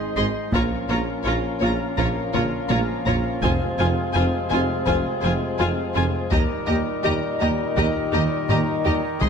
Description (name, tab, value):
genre	cinematic, epic orchestral film score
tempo	83 BPM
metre	4/4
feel	straight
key	unclear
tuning	A4 = 440 Hz
part	clear trombone section	sustained chords	0.0-9.3 s	Ab2 to Ab3	-31 LUFS	right 4 dB	none
part	mellow French horn section	sustained chords	0.0-9.3 s	G3 to Eb4	-29 LUFS	left 5 dB	none
part	warm woodwind section	sustained chords	0.0-9.3 s	C4 to F5	-31 LUFS	left 3 dB	none
part	warm chamber violin section	melody	0.2-9.3 s	Ab5 to C6	-30 LUFS	left 3 dB	none
part	warm symphonic violin section	second line	0.2-9.3 s	C5 to Eb5	-31 LUFS	left 4 dB	none
part	warm studio viola section	accompaniment	0.2-9.3 s	F4 to Ab4	-29 LUFS	right 1 dB	none
part	mellow tuba	bass	0.2-9.3 s	F1 to Eb2	-29 LUFS	right 3 dB	none
part	rich symphonic cello section	bass	0.2-9.3 s	Eb2 to Bb2	-28 LUFS	right 2 dB	none
part	rich symphonic double bass section	bass	0.2-9.3 s	F1 to Eb2	-29 LUFS	right 1 dB	none
part	taiko ensemble	drums	0.5-9.3 s	none	-27 LUFS	left 1 dB	none
room	moderate scoring stage reverb, RT60 1.7 s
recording	none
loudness	-20 LUFS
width	side -6 dB against mid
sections	0.0-9.3 A section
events	drum fill 2.3-3.4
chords	0.0 Ab; 0.5 Bbm; 3.4 Fm; 6.3 Eb